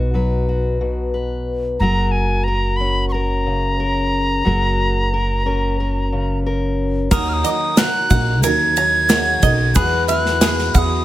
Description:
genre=indie folk with a building arrangement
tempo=90 BPM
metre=4/4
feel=straight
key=unclear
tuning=A4 = 440 Hz
part: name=fingerpicked steel-string acoustic guitar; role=accompaniment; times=0.0-9.8 s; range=B2 to B4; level=-22 LUFS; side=left 2 dB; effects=none
part: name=upright bass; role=bass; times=0.0-11.0 s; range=F#1 to E2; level=-20 LUFS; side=equal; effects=none
part: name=tin whistle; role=melody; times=1.8-11.0 s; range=G#5 to G#6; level=-20 LUFS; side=equal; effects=none
part: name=glockenspiel with rubber mallets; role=second line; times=7.1-11.0 s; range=A#5 to B5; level=-27 LUFS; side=left 5 dB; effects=none
part: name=dark upright piano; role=accompaniment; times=7.1-11.0 s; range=D#2 to C#5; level=-26 LUFS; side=right 5 dB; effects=none
part: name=picked twelve-string acoustic guitar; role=accompaniment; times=7.1-11.0 s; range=D#3 to F#4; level=-26 LUFS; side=left 5 dB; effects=none
part: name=bluegrass banjo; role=arpeggios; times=7.1-11.0 s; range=G#4 to A#5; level=-25 LUFS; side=right 6 dB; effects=none
part: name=unplugged drum kit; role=drums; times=7.1-10.9 s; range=kick drum, ride cymbal, snare drum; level=-20 LUFS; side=equal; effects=none
part: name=egg shaker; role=percussion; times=7.1-10.9 s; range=none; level=-28 LUFS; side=right 18 dB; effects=none
part: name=group handclap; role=percussion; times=7.8-10.6 s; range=none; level=-28 LUFS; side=left 7 dB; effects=none
room=small room ambience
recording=none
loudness=-15 LUFS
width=side -14 dB against mid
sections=0.0-7.1 A section; 7.1-11.0 B section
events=none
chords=0.0 B; 1.8 F#; 7.1 D#m; 9.8 Eadd9

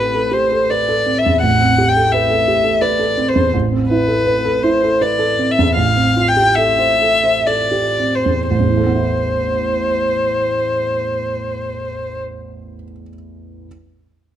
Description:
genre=classical, impressionist duo for violin and grand piano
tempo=54-87 BPM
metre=3/4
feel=rubato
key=A minor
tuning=A4 = 442 Hz
part: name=rich violin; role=melody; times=0.0-12.2 s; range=B4 to G5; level=-16 LUFS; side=left 2 dB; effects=none
part: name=warm grand piano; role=accompaniment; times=0.0-13.7 s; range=A1 to C5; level=-18 LUFS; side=right 2 dB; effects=none
room=light reverb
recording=close, detailed microphones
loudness=-13 LUFS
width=side -10 dB against mid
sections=0.0-8.5 A section; 8.5-11.5 B section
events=slowing down 2.5-8.5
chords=0.0 Am9; 3.5 Amadd9; 5.8 Fmaj9/A; 8.5 Amadd9

